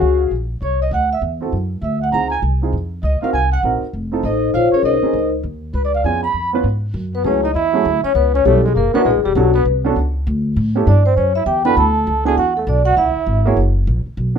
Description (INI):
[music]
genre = jazz, small-group swing and bop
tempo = 199 BPM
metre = 4/4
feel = swing 63% on 8ths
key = F# minor from 6.9 s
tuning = A4 = 439 Hz
[part]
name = vibraphone with soft mallets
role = melody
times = 0.0-13.5 s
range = Db4 to Cb6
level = -17 LUFS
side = left 2 dB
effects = none
[part]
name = mellow trumpet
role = second line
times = 0.0-13.5 s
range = F#3 to Cb6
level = -23 LUFS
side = right 5 dB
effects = none
[part]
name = warm concert grand piano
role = accompaniment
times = 0.0-14.4 s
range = F#3 to F5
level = -20 LUFS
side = right 4 dB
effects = none
[part]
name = upright bass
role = bass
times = 0.0-14.4 s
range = E1 to A2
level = -18 LUFS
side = equal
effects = none
[sound]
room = little or no reverb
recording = minimal, uncompressed stereo recording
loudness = -14 LUFS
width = side -7 dB against mid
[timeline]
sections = 0.0-6.9 A section; 6.9-14.4 B section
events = none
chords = 0.0 Ebm11; 0.9 Dadd9; 2.1 Dbmaj7; 3.3 Cm7b5; 3.9 F7; 4.5 Bbmadd9; 5.7 Db7; 6.9 F#m9; 8.2 C#m7b5; 8.8 F#7b13; 9.4 Bm9; 10.6 A9; 11.8 D69; 13.0 C#m; 13.6 F#